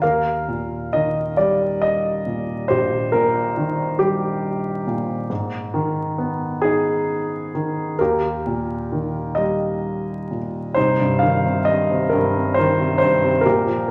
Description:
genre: classical, lyrical solo piano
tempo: 43-47 BPM (dotted quarters)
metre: 6/8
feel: rubato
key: Eb major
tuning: A4 = 439 Hz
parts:
  - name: warm grand piano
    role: solo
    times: 0.0-13.9 s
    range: Bb1 to F5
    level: -21 LUFS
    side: equal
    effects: none
room: wet recital hall reverb, RT60 1.7 s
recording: vinyl crackle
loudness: -21 LUFS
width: mono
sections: 0.0-10.8 A section; 10.8-13.9 B section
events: none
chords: 0.0 Ebadd9; 5.3 Abm; 8.0 Eb; 10.8 Cm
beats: | 0.02 1.38 | 2.70 4.00 | 5.30 6.63 | 7.99 9.37 | 10.76 12.12 | 13.45

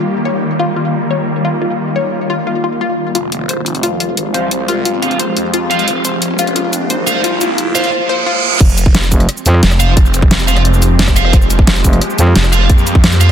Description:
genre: dark technical drum and bass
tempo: 176 BPM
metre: 4/4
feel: straight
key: F minor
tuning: A4 = 440 Hz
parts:
  - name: swarming drone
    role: sustained chords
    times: 0.0-13.3 s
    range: Eb3 to G4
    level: -19 LUFS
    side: equal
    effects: built-in reverb, sidechain pumping
  - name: analog pluck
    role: arpeggios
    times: 0.3-8.3 s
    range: F4 to Db5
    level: -19 LUFS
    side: left 3 dB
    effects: chorus, phaser, vintage 12-bit sampler grit, sidechain pumping, digital delay
  - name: phased detuned saw bass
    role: bass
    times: 3.1-13.3 s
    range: F1 to F2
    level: -15 LUFS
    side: equal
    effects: phaser, overdrive, sidechain pumping, high-pass filter
  - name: dubstep drum kit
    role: drums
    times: 3.1-13.3 s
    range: crash cymbal, hi-hat, rim click, shaker, snare drum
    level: -16 LUFS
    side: equal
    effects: overdrive
  - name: riser and reverse cymbal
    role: sound effects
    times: 5.3-8.6 s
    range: none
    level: -20 LUFS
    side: right 3 dB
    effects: none
  - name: heavy high-gain guitar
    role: stabs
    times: 4.3-13.3 s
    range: F4 to F5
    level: -19 LUFS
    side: right 2 dB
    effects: distortion, low-pass filter, digital delay
  - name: electronic kick drum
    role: drums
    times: 8.6-13.0 s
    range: none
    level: -10 LUFS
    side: equal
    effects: none
  - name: growling FM bass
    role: bass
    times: 9.1-9.6, 11.8-12.3 s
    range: F1 to F2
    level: -10 LUFS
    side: equal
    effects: none
room: light reverb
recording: dense, heavily limited modern master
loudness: -11 LUFS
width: side -9 dB against mid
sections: 0.0-3.2 A section; 3.2-8.6 B section; 8.6-13.3 C section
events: build-up 3.2-8.6; filter sweep on distorted electric guitar 3.2-8.6; riser 5.3-7.9; reverse cymbal 7.9-8.6; drop 8.6-13.3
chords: 0.0 Eb; 3.2 Fmadd9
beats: 0.08 | 0.42 0.76 1.10 1.45 | 1.79 2.13 2.47 2.81 | 3.15 3.49 3.83 4.17 | 4.51 4.86 5.20 5.54 | 5.88 6.22 6.56 6.90 | 7.24 7.58 7.92 8.26 | 8.61 8.95 9.29 9.63 | 9.97 10.31 10.65 10.99 | 11.33 11.67 12.01 12.36 | 12.70 13.04

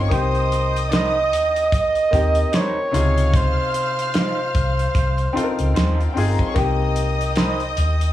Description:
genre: lush 1970s-style soul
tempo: 74 BPM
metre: 4/4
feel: swing 58% on 16ths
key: unclear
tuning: A4 = 440 Hz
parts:
  - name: rich studio string section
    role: second line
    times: 0.0-8.1 s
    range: Eb4 to F6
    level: -28 LUFS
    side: left 2 dB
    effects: none
  - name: clear grand piano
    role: accompaniment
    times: 0.0-8.1 s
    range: C3 to Bb4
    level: -26 LUFS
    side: left 4 dB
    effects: none
  - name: vintage muted fingered electric bass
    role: bass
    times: 0.0-8.1 s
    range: G1 to Eb2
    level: -21 LUFS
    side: equal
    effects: none
  - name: clear flugelhorn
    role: melody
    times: 0.1-6.1 s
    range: C5 to Eb5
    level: -21 LUFS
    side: right 2 dB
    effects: none
  - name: damped 70s drum kit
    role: drums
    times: 0.1-8.1 s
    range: hi-hat, kick drum, snare drum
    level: -23 LUFS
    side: equal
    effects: none
  - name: electric guitar through a small old amp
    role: riff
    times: 0.9-7.6 s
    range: Eb4 to C5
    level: -29 LUFS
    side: right 5 dB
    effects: none
room: small room ambience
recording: small room reverb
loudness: -17 LUFS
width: side -13 dB against mid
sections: 0.0-8.1 A section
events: none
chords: 0.1 Cm7; 2.9 Dbmaj9; 6.6 Cm7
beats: | 0.11 0.92 1.72 2.53 | 3.33 4.14 4.95 5.75 | 6.56 7.36

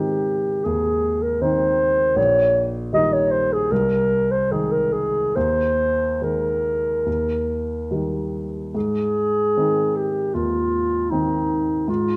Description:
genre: classical, romantic duo for clarinet and grand piano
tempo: 69-80 BPM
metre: 4/4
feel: rubato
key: Ab major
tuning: A4 = 444 Hz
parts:
  - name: dark clarinet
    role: melody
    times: 0.0-12.2 s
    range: Eb4 to Eb5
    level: -22 LUFS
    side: equal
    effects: none
  - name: warm baby grand piano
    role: accompaniment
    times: 0.0-12.2 s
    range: Bb1 to Eb4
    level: -27 LUFS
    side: equal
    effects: none
room: moderate recital hall reverb, RT60 1.3 s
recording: close, detailed microphones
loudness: -21 LUFS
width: mono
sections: 0.0-12.2 A section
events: none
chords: 0.0 Ab; 2.2 Eb/Bb; 3.7 Ab/C; 5.4 Ebsus4; 7.1 Eb; 8.7 Ab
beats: 0.66 1.42 | 2.17 2.93 3.71 4.51 | 5.36 6.21 7.07 7.90 | 8.75 9.56 10.35 11.12 | 11.88

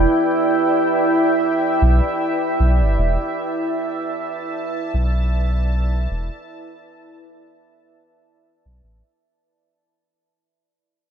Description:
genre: ambient dub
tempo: 77 BPM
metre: 4/4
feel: swing 55% on 16ths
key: E minor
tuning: A4 = 440 Hz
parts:
  - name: deep dark ambient pad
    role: sustained chords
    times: 0.0-9.3 s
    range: E4 to A5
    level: -19 LUFS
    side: right 1 dB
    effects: chorus, built-in reverb
  - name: soft dub sub bass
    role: bass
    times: 0.0-9.0 s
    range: E1 to B1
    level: -17 LUFS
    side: equal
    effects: tube saturation
room: moderate echo chamber reverb, RT60 1.7 s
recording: none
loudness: -17 LUFS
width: side -8 dB against mid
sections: 0.0-9.2 A section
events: fade-out 0.9-9.2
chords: 0.0 Em7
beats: 0.65 1.43 2.21 | 2.99 3.77 4.55 5.33 | 6.11 6.88 7.67 8.44

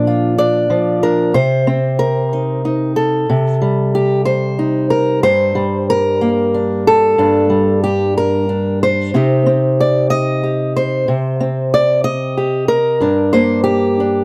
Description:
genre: folk, solo fingerstyle acoustic guitar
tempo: 62 BPM (dotted quarters)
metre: 6/8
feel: straight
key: unclear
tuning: A4 = 442 Hz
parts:
  - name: fingerpicked acoustic archtop guitar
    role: solo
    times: 0.0-14.2 s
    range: G2 to Eb5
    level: -15 LUFS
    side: equal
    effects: none
room: little or no reverb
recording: dry, close 1970s-style studio recording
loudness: -15 LUFS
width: mono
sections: 0.0-1.4 A section; 1.4-14.2 B section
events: none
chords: 0.0 Bb; 1.4 Cm; 5.2 Gmadd9; 9.1 Cm; 13.0 Gm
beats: 0.38 | 1.35 2.32 | 3.29 4.27 | 5.24 6.21 | 7.18 8.16 | 9.13 10.11 | 11.08 12.05 | 13.03 14.00

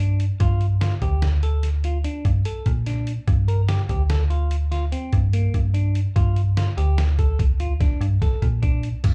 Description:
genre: progressive instrumental, band music in an uneven meter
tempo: 146 BPM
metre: 7/4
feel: straight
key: G minor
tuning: A4 = 440 Hz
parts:
  - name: semi-hollow electric guitar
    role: arpeggios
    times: 0.0-8.9 s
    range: Bb3 to Bb4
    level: -35 LUFS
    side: equal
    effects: slapback echo
  - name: metallic FM bass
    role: bass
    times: 0.0-9.1 s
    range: D2 to Bb2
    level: -23 LUFS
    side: equal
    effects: none
  - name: trip hop sampler-style drum kit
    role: drums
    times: 0.2-9.1 s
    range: crash cymbal, hi-hat, kick drum, snare drum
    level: -25 LUFS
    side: equal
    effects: none
room: little or no reverb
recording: live gig heard through the venue's PA, club reverb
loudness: -21 LUFS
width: mono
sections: 0.0-9.0 A section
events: none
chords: 0.0 Gm9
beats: | 0.40 0.81 1.22 1.64 2.05 2.46 2.87 | 3.28 3.69 4.10 4.51 4.92 5.33 5.75 | 6.16 6.57 6.98 7.39 7.80 8.21 8.63 | 9.04

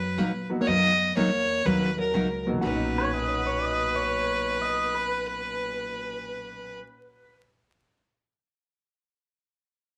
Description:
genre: country, western swing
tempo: 122 BPM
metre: 4/4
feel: swing 68% on 8ths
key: B major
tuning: A4 = 440 Hz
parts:
  - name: clear fiddle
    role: melody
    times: 0.0-6.8 s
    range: A#4 to D#5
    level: -30 LUFS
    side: equal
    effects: none
  - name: hollow-body jazz guitar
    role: second line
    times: 0.0-6.7 s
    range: F#3 to F#4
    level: -36 LUFS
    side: equal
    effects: none
  - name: upright bass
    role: bass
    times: 0.0-6.8 s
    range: B1 to A#2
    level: -37 LUFS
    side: equal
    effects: none
  - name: picked steel-string acoustic guitar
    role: accompaniment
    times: 0.2-6.8 s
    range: B2 to F#4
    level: -33 LUFS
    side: equal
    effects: none
  - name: clear upright piano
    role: accompaniment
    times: 0.5-7.8 s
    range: A#2 to F#6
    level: -36 LUFS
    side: equal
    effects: none
  - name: pedal steel guitar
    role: second line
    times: 3.0-7.3 s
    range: B4 to D#5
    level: -33 LUFS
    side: equal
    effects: none
room: wet studio reverb, RT60 0.5 s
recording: vinyl crackle, lossy compression artefacts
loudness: -26 LUFS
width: mono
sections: 0.7-2.6 A section; 2.6-6.6 B section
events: none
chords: 0.0 Bmaj7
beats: 0.18 | 0.67 1.16 1.65 2.14 | 2.64 3.13 3.62 4.11 | 4.60 5.10 5.59 6.08

